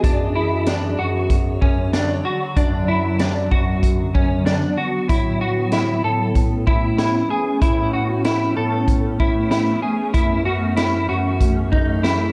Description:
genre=dream pop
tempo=95 BPM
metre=4/4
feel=straight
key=unclear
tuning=A4 = 441 Hz
part: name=granular cloud pad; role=sustained chords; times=0.0-12.3 s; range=D3 to C#5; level=-27 LUFS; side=equal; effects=built-in reverb
part: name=clean electric guitar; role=arpeggios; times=0.0-12.3 s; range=C#4 to A4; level=-24 LUFS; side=equal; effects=ensemble chorus, analog delay
part: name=dark bass clarinet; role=bass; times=0.0-12.3 s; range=F#2 to A2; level=-26 LUFS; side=equal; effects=none
part: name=raw garage drum kit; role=drums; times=0.0-12.2 s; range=hi-hat, kick drum, snare drum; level=-23 LUFS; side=equal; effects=none
room=moderate studio reverb, RT60 0.7 s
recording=dark, warm production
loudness=-19 LUFS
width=mono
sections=0.0-12.3 A section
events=none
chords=0.0 Dmaj7/F#; 5.1 Aadd9; 10.1 F#m7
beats=| 0.04 0.67 1.30 1.94 | 2.57 3.20 3.83 4.46 | 5.09 5.72 6.36 6.99 | 7.62 8.25 8.88 9.52 | 10.15 10.78 11.41 12.04

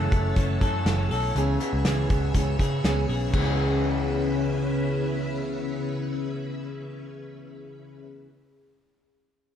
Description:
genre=jangly indie pop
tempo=121 BPM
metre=4/4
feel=straight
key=C# minor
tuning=A4 = 437 Hz
part: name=fingerpicked plugged-in steel-string acoustic guitar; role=accompaniment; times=0.0-8.4 s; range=F#2 to A4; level=-33 LUFS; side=right 7 dB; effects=none
part: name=string machine, full ensemble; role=sustained chords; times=0.0-8.1 s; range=C#3 to E6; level=-31 LUFS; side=left 2 dB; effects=ensemble chorus
part: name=electric guitar through a small old amp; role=arpeggios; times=0.0-8.3 s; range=F#2 to A4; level=-31 LUFS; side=left 5 dB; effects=digital delay
part: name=vintage muted picked electric bass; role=bass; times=0.0-8.2 s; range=F#1 to C#3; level=-27 LUFS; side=equal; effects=none
part: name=loose indie drum kit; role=drums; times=0.1-3.5 s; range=crash cymbal, hi-hat, kick drum, snare drum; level=-28 LUFS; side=equal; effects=none
part: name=vibraphone with medium hard mallets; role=second line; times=3.3-8.2 s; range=G#4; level=-35 LUFS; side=left 2 dB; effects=digital delay
room=little or no reverb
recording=dark, warm production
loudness=-23 LUFS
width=side -9 dB against mid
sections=0.0-3.3 A section; 3.3-7.3 B section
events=none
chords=0.0 F#m7; 1.4 C#m7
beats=0.36 0.86 | 1.35 1.85 2.34 2.84 | 3.33 3.83 4.32 4.82 | 5.32 5.81 6.31 6.80

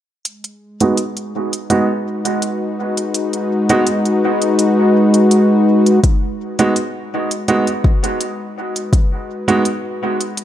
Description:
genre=ambient dub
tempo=83 BPM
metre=4/4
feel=straight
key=G# minor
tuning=A4 = 440 Hz
part: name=warm analog pad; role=sustained chords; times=0.2-10.4 s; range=G#3 to B4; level=-16 LUFS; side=left 1 dB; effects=chorus
part: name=electronic hi-hat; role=drums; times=0.3-10.4 s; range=none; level=-23 LUFS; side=right 1 dB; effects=small room reverb
part: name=bright upright piano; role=stabs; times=0.8-9.6 s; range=G#3 to F#4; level=-18 LUFS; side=right 2 dB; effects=vintage 12-bit sampler grit, low-pass filter, dub echo
part: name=electronic kick drum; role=drums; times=6.0-9.1 s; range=none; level=-13 LUFS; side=left 1 dB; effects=overdrive, small room reverb
room=light reverb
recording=none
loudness=-14 LUFS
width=side -11 dB against mid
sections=0.3-6.0 A section; 6.0-10.4 B section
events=fade-in on analog synth pad 0.3-6.0; filter sweep on upright piano 0.3-6.0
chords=0.3 G#m7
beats=| 0.25 0.97 1.70 2.42 | 3.14 3.87 4.59 5.31 | 6.04 6.76 7.48 8.20 | 8.93 9.65 10.37

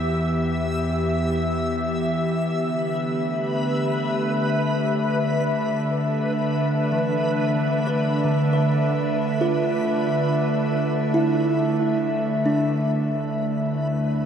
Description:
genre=ambient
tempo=68 BPM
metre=3/4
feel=straight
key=D dorian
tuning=A4 = 439 Hz
part: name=airy breathy pad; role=sustained chords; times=0.0-14.3 s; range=D3 to E5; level=-22 LUFS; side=equal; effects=chorus
part: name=round analog bass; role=bass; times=0.0-2.5, 13.1-14.3 s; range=D2 to E2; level=-32 LUFS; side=equal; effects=none
part: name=backwards swelling texture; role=texture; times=0.0-14.3 s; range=B4 to E6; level=-30 LUFS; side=equal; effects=built-in reverb
part: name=organ-like drone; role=drone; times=4.2-13.2 s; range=D3 to D4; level=-31 LUFS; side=right 2 dB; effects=ensemble chorus, built-in reverb
part: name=kalimba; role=arpeggios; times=6.9-14.3 s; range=D3 to B4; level=-26 LUFS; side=right 2 dB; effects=diffuse ambient delay
room=wet huge ambient reverb, RT60 7.4 s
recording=none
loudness=-20 LUFS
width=side -8 dB against mid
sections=0.0-2.5 A section; 2.5-13.1 B section; 13.1-14.3 A section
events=fade-in on kalimba 2.5-13.1; fade-in on synth drone 2.5-13.1; fade-out on synth texture 2.5-13.1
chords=0.0 Em; 2.5 Dm69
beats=0.78 1.66 | 2.55 3.43 4.31 | 5.19 6.08 6.96 | 7.84 8.72 9.61 | 10.49 11.37 12.25 | 13.13 14.02

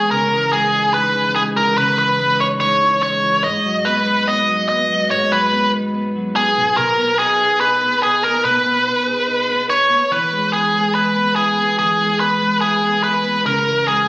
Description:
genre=indie pop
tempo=144 BPM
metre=4/4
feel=straight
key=unclear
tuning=A4 = 440 Hz
part: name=biting lead guitar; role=melody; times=0.0-14.1 s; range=G#4 to D#5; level=-14 LUFS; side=equal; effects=overdrive, plate reverb, analog delay
part: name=twelve-string electric guitar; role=arpeggios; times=0.0-14.1 s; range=G#2 to G#4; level=-22 LUFS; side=equal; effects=analog delay
room=moderate club reverb, RT60 0.5 s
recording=recorded on a phone in the room, club reverb, compression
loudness=-14 LUFS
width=side -21 dB against mid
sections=0.0-10.1 A section; 10.1-14.1 B section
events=none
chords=0.1 C#madd9; 3.4 G#m7; 6.6 B6; 10.1 E; 13.5 C#m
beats=| 0.11 0.53 0.94 1.36 | 1.78 2.19 2.61 3.03 | 3.45 3.86 4.28 4.70 | 5.11 5.53 5.95 6.36 | 6.78 7.19 7.61 8.03 | 8.44 8.86 9.28 9.69 | 10.11 10.53 10.95 11.36 | 11.78 12.20 12.62 13.04 | 13.46 13.88

